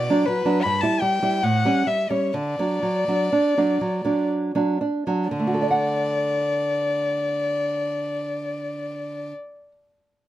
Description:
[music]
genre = romantic duo for violin and classical guitar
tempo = 58-82 BPM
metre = 3/4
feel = rubato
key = D major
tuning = A4 = 438 Hz
[part]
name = dark violin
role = melody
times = 0.0-9.3 s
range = B4 to B5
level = -24 LUFS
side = left 2 dB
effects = none
[part]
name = nylon-string guitar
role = accompaniment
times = 0.0-9.7 s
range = G2 to F#5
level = -23 LUFS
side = right 2 dB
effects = none
[sound]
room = moderate studio reverb, RT60 0.5 s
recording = none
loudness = -20 LUFS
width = side -13 dB against mid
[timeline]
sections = 0.0-5.3 A section; 5.3-10.3 B section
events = slowing down 0.0-5.3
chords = 0.0 Bm; 0.6 Em/G; 1.4 A7; 2.3 D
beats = 0.62 1.42 | 2.32 3.30 4.28 | 5.30 6.29 7.25 | 8.21 9.18

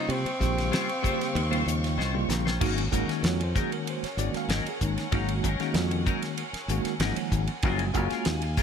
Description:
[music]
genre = electric jazz fusion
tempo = 96 BPM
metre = 4/4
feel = straight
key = unclear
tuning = A4 = 440 Hz
[part]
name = breathy tenor saxophone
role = melody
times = 0.0-2.0 s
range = C4 to Eb4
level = -32 LUFS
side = equal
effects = slapback echo
[part]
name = bell-like tine electric piano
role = accompaniment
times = 0.0-8.6 s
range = Db3 to G5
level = -31 LUFS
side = right 1 dB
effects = medium stereo tremolo
[part]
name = dark symphonic string section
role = sustained chords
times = 0.0-8.6 s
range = Bb3 to Db6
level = -36 LUFS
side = left 2 dB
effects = none
[part]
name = clean electric guitar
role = stabs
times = 0.0-8.6 s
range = Gb3 to C5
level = -35 LUFS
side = left 6 dB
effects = lush chorus
[part]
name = fingered electric bass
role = bass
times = 0.1-8.6 s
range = Gb1 to C3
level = -29 LUFS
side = equal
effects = none
[part]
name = damped 70s drum kit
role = drums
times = 0.1-8.6 s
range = crash cymbal, hi-hat, kick drum, ride cymbal, snare drum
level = -31 LUFS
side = equal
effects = none
[sound]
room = little or no reverb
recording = none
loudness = -25 LUFS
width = side -7 dB against mid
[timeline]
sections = 0.0-2.6 A section; 2.6-8.6 B section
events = tine electric piano fill 1.7-2.6; drum fill 2.0-2.6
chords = 0.0 Eb13; 2.6 Ab9sus4; 7.6 Gbmaj9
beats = | 0.09 0.72 1.35 1.98 | 2.61 3.24 3.87 4.50 | 5.12 5.75 6.38 7.01 | 7.63 8.26

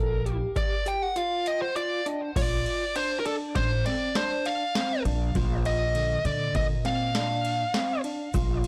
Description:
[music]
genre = progressive instrumental, band music in an uneven meter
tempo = 100 BPM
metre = 5/4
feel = straight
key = Bb major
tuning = A4 = 441 Hz
[part]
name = tine electric piano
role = arpeggios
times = 0.0-8.7 s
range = D3 to A4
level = -35 LUFS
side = equal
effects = none
[part]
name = upright bass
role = bass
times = 0.0-8.6 s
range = A1 to Bb2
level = -31 LUFS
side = equal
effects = none
[part]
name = booming analog drum machine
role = drums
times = 0.3-8.7 s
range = crash cymbal, hi-hat, kick drum, ride cymbal, snare drum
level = -34 LUFS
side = equal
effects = overdrive
[part]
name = dark smooth lead guitar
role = melody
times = 0.6-8.0 s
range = A4 to G5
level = -31 LUFS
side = equal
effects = overdrive, tape echo
[part]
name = egg shaker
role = percussion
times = 0.6-1.3, 8.3-8.6 s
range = none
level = -54 LUFS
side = equal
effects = none
[sound]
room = moderate small room reverb, RT60 0.5 s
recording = blown-out, overdriven recording, overdrive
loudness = -27 LUFS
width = mono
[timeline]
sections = 0.0-2.4 A section; 2.4-8.7 B section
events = lead electric guitar solo 0.0-2.4; kick and snare drop out 1.2-2.4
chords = 0.0 Bb; 2.4 Dm7; 5.4 Bbadd9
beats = 0.56 1.16 1.76 | 2.36 2.96 3.56 4.16 4.76 | 5.36 5.95 6.55 7.15 7.75 | 8.34

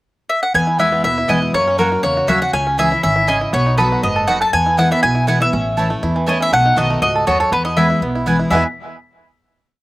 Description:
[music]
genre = bluegrass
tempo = 241 BPM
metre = 4/4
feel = straight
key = E major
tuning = A4 = 440 Hz
[part]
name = mandolin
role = melody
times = 0.3-8.6 s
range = A#4 to A5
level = -16 LUFS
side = left 1 dB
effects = none
[part]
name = picked steel-string acoustic guitar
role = accompaniment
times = 0.5-8.6 s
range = E2 to F#4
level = -20 LUFS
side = left 1 dB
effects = none
[part]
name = bluegrass banjo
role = arpeggios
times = 0.5-8.7 s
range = E3 to A4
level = -22 LUFS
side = right 2 dB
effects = slapback echo
[part]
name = upright bass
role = bass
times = 0.5-8.6 s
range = F#1 to F#2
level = -23 LUFS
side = equal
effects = none
[part]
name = mandolin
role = stabs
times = 0.8-8.6 s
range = A3 to B5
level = -22 LUFS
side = right 3 dB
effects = slapback echo
[sound]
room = little or no reverb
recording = recorded outdoors, with no room sound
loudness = -13 LUFS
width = side -18 dB against mid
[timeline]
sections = 0.0-0.5 pickup bar; 0.5-8.5 A section; 8.5-9.5 final chord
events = none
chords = 0.0 N.C.; 0.5 E; 1.5 F#; 2.5 C#m; 3.5 B; 4.5 E; 5.5 A; 6.5 B7; 7.5 E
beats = 0.04 0.29 | 0.54 0.79 1.04 1.29 | 1.54 1.79 2.04 2.29 | 2.54 2.79 3.04 3.28 | 3.53 3.78 4.03 4.28 | 4.53 4.78 5.03 5.28 | 5.53 5.78 6.02 6.27 | 6.52 6.77 7.02 7.27 | 7.52 7.77 8.02 8.27 | 8.51

